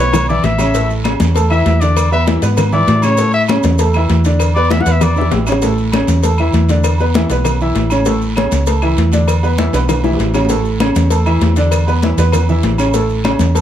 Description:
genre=latin, salsa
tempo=197 BPM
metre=4/4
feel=straight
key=A major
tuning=A4 = 439 Hz
part: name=clear trumpet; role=melody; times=0.0-5.3 s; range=C#5 to F#5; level=-17 LUFS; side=left 2 dB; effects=plate reverb
part: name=bright grand piano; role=accompaniment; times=0.0-13.6 s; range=A2 to B5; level=-17 LUFS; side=equal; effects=none
part: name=hollow-body short-scale fingered electric bass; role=bass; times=0.0-13.6 s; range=A1 to A2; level=-15 LUFS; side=right 1 dB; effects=none
part: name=agogo bells and timbales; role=percussion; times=0.1-13.6 s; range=none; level=-24 LUFS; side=right 5 dB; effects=none
part: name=claves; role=percussion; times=0.1-13.4 s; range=none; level=-30 LUFS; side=left 4 dB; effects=none
part: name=congas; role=percussion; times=0.1-13.6 s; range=none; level=-20 LUFS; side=left 2 dB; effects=none
part: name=cowbell and bongos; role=percussion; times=0.1-13.6 s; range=none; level=-23 LUFS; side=left 9 dB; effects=none
part: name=guiro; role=percussion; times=0.1-13.6 s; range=none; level=-32 LUFS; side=right 6 dB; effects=none
part: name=maracas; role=percussion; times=0.1-13.6 s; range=none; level=-31 LUFS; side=right 6 dB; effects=none
room=moderate studio reverb, RT60 0.6 s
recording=dark, warm production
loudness=-11 LUFS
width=side -10 dB against mid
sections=0.0-5.6 A section; 5.6-13.6 B section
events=trumpet solo 0.0-5.6; drum fill 0.1-0.7, 4.7-5.6, 9.7-10.5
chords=0.0 E5; 0.7 A; 2.0 E7; 3.2 A; 4.4 E5; 5.6 A; 6.8 E5; 8.1 A; 9.3 E5; 10.5 A; 11.7 E5; 12.9 A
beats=0.13 0.44 | 0.74 1.05 1.35 1.66 | 1.96 2.27 2.57 2.88 | 3.18 3.49 3.79 4.10 | 4.40 4.71 5.01 5.32 | 5.62 5.92 6.23 6.54 | 6.84 7.14 7.45 7.75 | 8.06 8.37 8.67 8.97 | 9.28 9.59 9.89 10.20 | 10.50 10.80 11.11 11.41 | 11.72 12.02 12.33 12.63 | 12.94 13.24 13.55

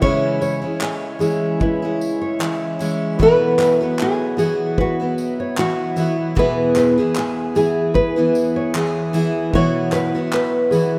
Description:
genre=acoustic pop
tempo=76 BPM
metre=4/4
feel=swing 55% on 16ths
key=E major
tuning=A4 = 439 Hz
part: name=nylon-string guitar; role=melody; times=0.0-11.0 s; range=E4 to C#5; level=-22 LUFS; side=equal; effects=none
part: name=felt-muted upright piano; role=accompaniment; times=0.0-11.0 s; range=B3 to E5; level=-33 LUFS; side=equal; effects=none
part: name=picked steel-string acoustic guitar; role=accompaniment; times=0.0-11.0 s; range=E2 to G#4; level=-23 LUFS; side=equal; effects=none
part: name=pedal harmonium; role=sustained chords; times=0.0-11.0 s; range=E2 to C#5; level=-32 LUFS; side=equal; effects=none
part: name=loose indie drum kit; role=drums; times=0.0-10.9 s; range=handclaps, kick drum, tambourine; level=-28 LUFS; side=equal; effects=none
part: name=nylon-string guitar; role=arpeggios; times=0.4-11.0 s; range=G#4 to C#5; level=-26 LUFS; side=equal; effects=none
room=moderate lush hall reverb, RT60 2.5 s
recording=rough home demo mix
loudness=-19 LUFS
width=mono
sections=0.0-11.0 A section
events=none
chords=0.0 C#m; 3.2 Bsus4; 6.4 E; 9.5 Bsus4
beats=| 0.03 0.82 1.61 2.40 | 3.20 3.99 4.78 5.57 | 6.36 7.16 7.95 8.74 | 9.53 10.32

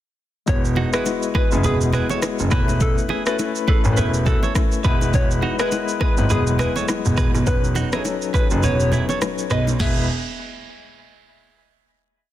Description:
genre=afrobeats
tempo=103 BPM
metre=4/4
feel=swing 58% on 16ths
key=E major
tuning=A4 = 440 Hz
part: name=soft struck synth lead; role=melody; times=0.5-10.1 s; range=G#4 to E5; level=-28 LUFS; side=left 2 dB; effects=chorus, ping-pong delay
part: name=barky tine electric piano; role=accompaniment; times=0.5-10.1 s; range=F#3 to B4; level=-25 LUFS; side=left 7 dB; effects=fast tremolo
part: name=warm concert grand piano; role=bass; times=0.5-10.1 s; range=E1 to B1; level=-21 LUFS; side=right 1 dB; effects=none
part: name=afro-pop drum kit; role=drums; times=0.5-10.0 s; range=crash cymbal, kick drum, rim click, shaker, snare drum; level=-22 LUFS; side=equal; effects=soft clipping on snare
part: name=congas and bongos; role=percussion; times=0.5-10.1 s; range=none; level=-29 LUFS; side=right 1 dB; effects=none
part: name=direct-recorded clean electric guitar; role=riff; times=0.8-10.1 s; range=D#4 to C#5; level=-28 LUFS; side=right 6 dB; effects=spring reverb, ping-pong delay
room=little or no reverb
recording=dense, heavily limited modern master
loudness=-17 LUFS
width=side -13 dB against mid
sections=0.5-9.8 verse; 9.8-12.1 final chord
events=kick muted 8.6-9.8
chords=0.5 E; 2.5 Aadd9/E; 4.8 E; 7.5 Badd9/E; 9.8 E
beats=| 0.48 1.06 1.64 2.22 | 2.81 3.39 3.97 4.55 | 5.14 5.72 6.30 6.88 | 7.47 8.05 8.63 9.21 | 9.80

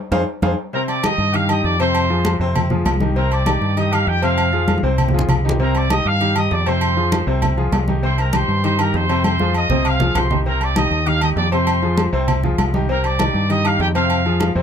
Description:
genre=latin, salsa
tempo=197 BPM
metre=4/4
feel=straight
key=C minor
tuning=A4 = 440 Hz
part: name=bright upright piano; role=accompaniment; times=0.1-14.6 s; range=C3 to F5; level=-22 LUFS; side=left 2 dB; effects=none
part: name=deep dub fingered electric bass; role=bass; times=0.1-14.6 s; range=C2 to G2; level=-20 LUFS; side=equal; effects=none
part: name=congas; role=percussion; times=0.1-14.6 s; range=none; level=-23 LUFS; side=left 1 dB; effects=none
part: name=timbales and agogo bells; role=percussion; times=0.1-14.6 s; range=none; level=-25 LUFS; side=right 1 dB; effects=none
part: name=bright trumpet section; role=melody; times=0.7-14.5 s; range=G4 to Eb6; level=-21 LUFS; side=right 1 dB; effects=none
room=little or no reverb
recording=close, detailed microphones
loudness=-15 LUFS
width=side -8 dB against mid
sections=0.7-10.5 A section; 10.5-14.6 A section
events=drum fill 0.0-0.7, 4.7-5.6, 9.2-10.5; band accent 0.0-0.7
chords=0.0 Fm; 0.7 Cm; 1.9 Fm; 3.2 Cm7; 4.4 Fm; 5.6 Cm7; 6.8 Fm; 8.0 Cm7; 9.2 Fm; 10.5 Cm7; 11.7 Fm; 12.9 Cm7; 14.1 Fm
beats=0.12 0.43 | 0.73 1.03 1.34 1.64 | 1.95 2.25 2.55 2.86 | 3.16 3.47 3.77 4.08 | 4.38 4.68 4.99 5.29 | 5.60 5.90 6.20 6.51 | 6.81 7.12 7.42 7.72 | 8.03 8.33 8.63 8.94 | 9.24 9.55 9.85 10.15 | 10.46 10.76 11.06 11.37 | 11.67 11.98 12.28 12.58 | 12.89 13.19 13.49 13.80 | 14.10 14.40

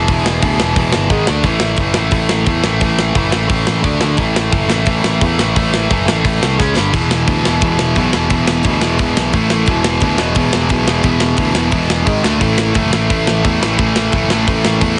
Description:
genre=punk rock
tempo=175 BPM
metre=4/4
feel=straight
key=unclear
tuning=A4 = 441 Hz
part: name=tight distorted guitar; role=riff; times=0.0-15.0 s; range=E2 to D4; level=-19 LUFS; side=equal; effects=distortion
part: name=picked electric bass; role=bass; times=0.0-15.0 s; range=E1 to E2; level=-21 LUFS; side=equal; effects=none
part: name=tight metal drum kit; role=drums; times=0.1-14.9 s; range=hi-hat, kick drum, snare drum, splash cymbal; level=-20 LUFS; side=equal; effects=none
part: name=sludgy distorted guitar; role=riff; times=6.9-15.0 s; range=E2 to D4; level=-20 LUFS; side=equal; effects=overdrive
room=little or no reverb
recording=heavily compressed radio sound, multiband compression, nothing above 10.3 kHz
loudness=-14 LUFS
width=mono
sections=0.0-15.0 A section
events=drum fill 6.6-6.9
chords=0.0 E5; 1.1 G#5; 1.3 D5; 1.5 A5; 3.9 D5; 4.2 A5; 6.6 C#5; 6.8 G5; 6.9 E5; 9.3 A5; 9.7 E5; 12.1 G#5; 12.2 D5; 12.4 A5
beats=| 0.09 0.43 0.77 1.11 | 1.46 1.80 2.14 2.48 | 2.82 3.17 3.51 3.85 | 4.19 4.54 4.88 5.22 | 5.57 5.91 6.25 6.60 | 6.94 7.28 7.63 7.97 | 8.31 8.65 9.00 9.34 | 9.68 10.02 10.37 10.71 | 11.05 11.39 11.73 12.08 | 12.42 12.76 13.10 13.44 | 13.79 14.13 14.47 14.81

